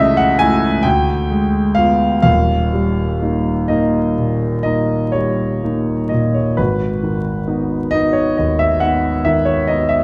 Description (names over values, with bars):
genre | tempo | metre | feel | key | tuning
classical, romantic nocturne for solo piano | 40-47 BPM (dotted quarters) | 9/8 | rubato | G# minor | A4 = 440 Hz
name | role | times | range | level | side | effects
warm concert grand piano | solo | 0.0-10.0 s | D#1 to G#5 | -16 LUFS | equal | none
room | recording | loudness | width
wet recital hall reverb, RT60 1.7 s | dark, warm production, vinyl crackle | -17 LUFS | mono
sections
0.0-10.0 A section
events
none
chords
0.0 A/C#; 0.8 Ddim7; 2.3 D#; 6.6 G#m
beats
0.85 | 2.26 3.71 5.14 | 6.59 7.93 9.25